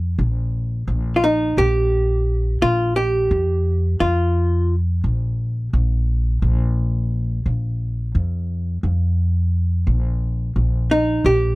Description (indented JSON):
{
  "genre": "progressive instrumental, band music in an uneven meter",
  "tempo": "174 BPM (eighths)",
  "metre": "7/8",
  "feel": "straight",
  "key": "unclear",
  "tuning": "A4 = 437 Hz",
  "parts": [
    { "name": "upright bass", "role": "bass", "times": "0.0-11.6 s", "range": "Bb1 to F2", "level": "-19 LUFS", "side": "equal", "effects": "none" },
    { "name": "archtop guitar, miked and amplified", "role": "melody", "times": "1.2-4.7, 10.9-11.6 s", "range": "Eb4 to G4", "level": "-18 LUFS", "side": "equal", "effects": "none" }
  ],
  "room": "little or no reverb",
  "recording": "dry, close 1970s-style studio recording",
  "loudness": "-18 LUFS",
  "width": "side -21 dB against mid",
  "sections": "0.0-11.6 A section",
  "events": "none",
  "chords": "0.2 Eb/Bb (rootless); 2.6 Bb5; 5.0 N.C.; 7.5 Bb5; 9.9 Bbsus4"
}